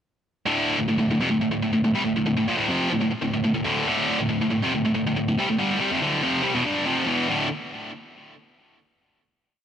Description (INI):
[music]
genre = metal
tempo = 140 BPM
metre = 4/4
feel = straight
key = D minor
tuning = A4 = 440 Hz
[part]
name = tight distorted guitar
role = solo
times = 0.5-7.5 s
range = D2 to G3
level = -21 LUFS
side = equal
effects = distortion, digital delay
[sound]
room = moderate studio reverb, RT60 0.9 s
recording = none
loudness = -21 LUFS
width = side -9 dB against mid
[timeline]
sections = 0.5-7.3 riff; 7.3-9.0 final chord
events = none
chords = 0.5 Dm; 7.3 D5